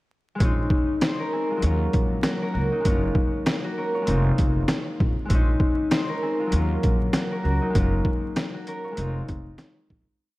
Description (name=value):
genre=hip hop, boom-bap hip-hop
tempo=98 BPM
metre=4/4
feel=swing 58% on 16ths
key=Bb minor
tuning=A4 = 440 Hz
part: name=concert harp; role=accompaniment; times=0.4-10.4 s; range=Gb3 to Db5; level=-26 LUFS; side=left 1 dB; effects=cassette tape, high-pass filter, low-pass filter, analog delay
part: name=upright bass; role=bass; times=0.4-10.0 s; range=F1 to Eb2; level=-24 LUFS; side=equal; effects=none
part: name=trip hop sampler-style drum kit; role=drums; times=0.4-10.1 s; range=hi-hat, kick drum, snare drum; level=-24 LUFS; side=equal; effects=overdrive
room=light reverb, small room reverb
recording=echo-heavy mix, vinyl crackle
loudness=-21 LUFS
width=side -19 dB against mid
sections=0.4-10.2 verse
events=fade-out 7.7-10.2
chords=0.4 Bbm11; 1.6 Ebm7; 2.9 Gbmaj7; 4.1 Fm7; 5.3 Bbm11; 6.5 Ebm7; 7.7 Gbmaj7; 9.0 Fm7